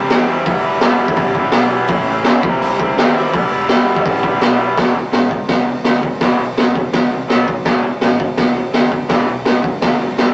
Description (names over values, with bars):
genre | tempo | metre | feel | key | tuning
garage rock duo or trio | 166 BPM | 4/4 | straight | E minor | A4 = 440 Hz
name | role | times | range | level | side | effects
raw garage guitar | riff | 0.0-10.3 s | E2 to E4 | -20 LUFS | equal | overdrive
growling picked electric bass | bass | 0.0-10.3 s | E1 to E2 | -30 LUFS | equal | overdrive, tube saturation
raw garage drum kit | drums | 0.1-10.3 s | hi-hat, kick drum, snare drum | -17 LUFS | equal | none
room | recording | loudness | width
moderate small room reverb, RT60 0.5 s | rough rehearsal-room recording, warm saturation, cassette tape, small speaker sound | -15 LUFS | mono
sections
0.0-4.8 A section; 4.8-10.3 B section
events
none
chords
0.5 Em; 1.9 A; 2.4 C; 3.3 Em; 4.8 E5; 7.3 B5; 7.7 E5